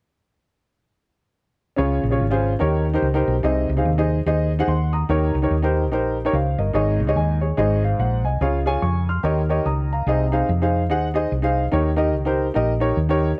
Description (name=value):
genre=uptempo gospel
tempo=145 BPM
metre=4/4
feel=swing 61% on 8ths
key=unclear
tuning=A4 = 438 Hz
part: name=warm upright piano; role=accompaniment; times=1.8-13.3 s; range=Ab2 to F6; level=-23 LUFS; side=equal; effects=none
part: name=hollow-body short-scale fingered electric bass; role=bass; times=1.8-13.3 s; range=G1 to F2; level=-24 LUFS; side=equal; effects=none
room=light reverb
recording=none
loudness=-21 LUFS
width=mono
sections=1.8-8.4 A section; 8.4-13.4 B section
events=none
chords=1.8 Db; 2.6 Eb7; 3.4 Ab/C; 5.1 Eb7; 6.8 Absus4; 7.6 Ab; 8.4 Db; 9.2 Eb7; 10.1 Ab/C; 11.7 Eb7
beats=| 1.79 2.20 2.61 3.03 | 3.44 3.85 4.27 4.68 | 5.09 5.51 5.92 6.33 | 6.75 7.16 7.58 7.99 | 8.41 8.82 9.24 9.65 | 10.07 10.48 10.90 11.31 | 11.73 12.14 12.56 12.97